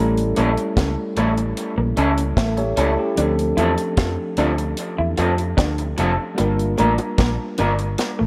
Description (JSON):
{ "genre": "lovers rock reggae", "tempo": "75 BPM", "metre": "4/4", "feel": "straight", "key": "unclear", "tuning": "A4 = 445 Hz", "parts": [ { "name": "tine electric piano", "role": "accompaniment", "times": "0.0-8.3 s", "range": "F3 to E5", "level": "-27 LUFS", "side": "equal", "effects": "none" }, { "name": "electric guitar through a small old amp", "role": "riff", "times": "0.0-8.3 s", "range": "F3 to F4", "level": "-28 LUFS", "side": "equal", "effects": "dub echo" }, { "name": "vintage muted fingered electric bass", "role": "bass", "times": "0.0-8.3 s", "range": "F1 to F2", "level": "-25 LUFS", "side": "equal", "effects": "none" }, { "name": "deep reggae drum kit", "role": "drums", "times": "0.2-8.2 s", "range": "hi-hat, kick drum, snare drum", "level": "-26 LUFS", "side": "equal", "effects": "dub echo" }, { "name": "electric guitar through a small old amp", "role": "stabs", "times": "0.4-7.8 s", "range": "G3 to Bb4", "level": "-26 LUFS", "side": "equal", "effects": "spring reverb, dub echo" }, { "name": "bongos", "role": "percussion", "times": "6.4-8.2 s", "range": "none", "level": "-31 LUFS", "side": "equal", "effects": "none" } ], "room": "light reverb, small room ambience", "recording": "none", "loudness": "-20 LUFS", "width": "mono", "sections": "0.0-8.3 A section", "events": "none", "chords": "0.0 A7; 3.2 Dm7; 6.4 Gm7" }